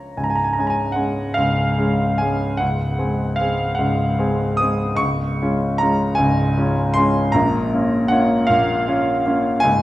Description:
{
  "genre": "classical, romantic nocturne for solo piano",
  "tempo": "44-55 BPM (dotted quarters)",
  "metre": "12/8",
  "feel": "rubato",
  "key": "Db major",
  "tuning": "A4 = 440 Hz",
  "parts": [
    { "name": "clear grand piano", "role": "solo", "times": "0.0-9.8 s", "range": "Db1 to Eb6", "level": "-17 LUFS", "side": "equal", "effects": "none" }
  ],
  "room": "wet recital hall reverb, RT60 1.3 s",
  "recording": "recorded in a church or concert hall",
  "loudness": "-17 LUFS",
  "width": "side -15 dB against mid",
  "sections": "0.1-9.8 A section",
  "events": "none",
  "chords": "0.1 Db; 2.6 Ab7/Db; 5.0 Db; 7.4 Bbm"
}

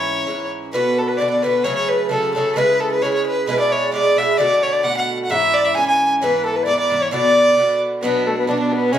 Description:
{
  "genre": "celtic folk, Celtic polka",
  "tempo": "132 BPM",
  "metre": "2/4",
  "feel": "swing 54% on 8ths",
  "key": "B dorian",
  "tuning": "A4 = 440 Hz",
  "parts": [
    { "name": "dark fiddle", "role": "melody", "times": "0.0-9.0 s", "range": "A3 to G#5", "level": "-17 LUFS", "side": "equal", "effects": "none" },
    { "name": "bright wooden flute", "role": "second line", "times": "0.0-9.0 s", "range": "D4 to G#5", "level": "-23 LUFS", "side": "left 4 dB", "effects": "none" },
    { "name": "Irish bouzouki", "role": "accompaniment", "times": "0.0-9.0 s", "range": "G#2 to G#4", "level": "-22 LUFS", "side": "right 4 dB", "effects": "none" }
  ],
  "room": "wet large studio reverb, RT60 0.8 s",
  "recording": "band playing live in one room",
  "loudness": "-15 LUFS",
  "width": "side -10 dB against mid",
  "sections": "0.7-8.0 A section",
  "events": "none",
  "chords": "0.0 C#m; 0.7 Bm; 1.6 F#madd9; 2.6 C#m; 3.5 E; 4.4 Bm7; 5.3 C#m; 6.2 E; 7.1 Bm"
}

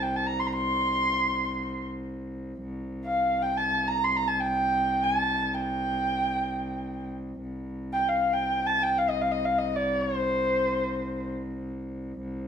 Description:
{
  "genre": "Turkish makam ensemble",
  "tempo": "free time",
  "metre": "none",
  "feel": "none",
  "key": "C makam huseyni",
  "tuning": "A4 = 441 Hz",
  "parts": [
    { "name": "warm kamancheh", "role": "melody", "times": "0.0-11.3 s", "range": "C5 to C6", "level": "-25 LUFS", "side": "equal", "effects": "slapback echo" },
    { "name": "rich cello", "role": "drone", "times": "0.0-12.5 s", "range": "C2", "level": "-32 LUFS", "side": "equal", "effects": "none" }
  ],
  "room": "light reverb",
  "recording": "close, detailed microphones",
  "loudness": "-25 LUFS",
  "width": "side -8 dB against mid",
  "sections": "0.0-12.5 A section",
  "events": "none",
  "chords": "none"
}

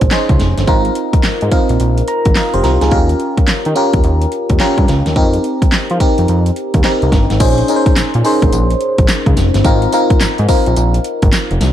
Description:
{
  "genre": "R&B, new jack swing",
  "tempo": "107 BPM",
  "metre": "4/4",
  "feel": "swing 64% on 16ths",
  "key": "Bb dorian",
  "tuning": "A4 = 442 Hz",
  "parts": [
    { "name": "FM electric piano", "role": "accompaniment", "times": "0.0-11.7 s", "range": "C4 to Bb5", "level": "-15 LUFS", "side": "equal", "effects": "chorus, phaser" },
    { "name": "fat analog bass", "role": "bass", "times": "0.0-11.7 s", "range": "F1 to F3", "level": "-15 LUFS", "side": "equal", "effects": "none" },
    { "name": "pop drum kit", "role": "drums", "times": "0.0-11.7 s", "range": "crash cymbal, handclaps, hi-hat, kick drum, snare drum, tambourine", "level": "-14 LUFS", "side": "equal", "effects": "overdrive" }
  ],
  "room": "little or no reverb",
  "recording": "dark, warm production",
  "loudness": "-11 LUFS",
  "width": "side -11 dB against mid",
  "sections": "0.0-7.4 A section; 7.4-11.7 B section",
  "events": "FM electric piano fill 1.8-2.9",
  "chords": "0.0 Bbm11; 2.9 Eb7; 5.2 F7sus4; 7.4 Bbm11; 9.6 Ab69"
}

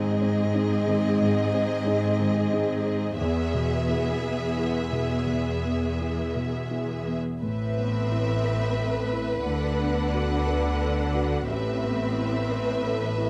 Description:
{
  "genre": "cinematic, emotional film score for orchestra",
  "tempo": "89 BPM",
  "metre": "3/4",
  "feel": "rubato",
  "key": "A dorian from 7.4 s",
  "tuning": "A4 = 440 Hz",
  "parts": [
    { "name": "rich studio violin section", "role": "melody", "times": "0.0-13.3 s", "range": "D#5 to F#5", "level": "-35 LUFS", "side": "equal", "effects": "none" },
    { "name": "dark grand piano", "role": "accompaniment", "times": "0.0-13.3 s", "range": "A1 to B4", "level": "-31 LUFS", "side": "equal", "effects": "none" },
    { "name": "rich studio viola section", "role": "accompaniment", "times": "0.0-13.3 s", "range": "B3 to G#4", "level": "-34 LUFS", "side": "equal", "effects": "none" },
    { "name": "rich studio cello section", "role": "bass", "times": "0.0-13.3 s", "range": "E2 to D3", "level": "-32 LUFS", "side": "equal", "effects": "none" },
    { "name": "warm studio violin section", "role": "second line", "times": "7.4-13.3 s", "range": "B4", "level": "-34 LUFS", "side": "equal", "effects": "none" },
    { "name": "rich studio double bass section", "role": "bass", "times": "7.4-13.3 s", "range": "A1 to D2", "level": "-32 LUFS", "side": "equal", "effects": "none" }
  ],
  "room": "light reverb",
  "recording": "close, detailed microphones",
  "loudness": "-26 LUFS",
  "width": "mono",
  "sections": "0.0-7.4 A section; 7.4-13.3 B section",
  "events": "none",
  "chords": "0.0 G#; 3.2 E; 7.4 Amadd9; 9.5 D6; 11.5 Amadd9"
}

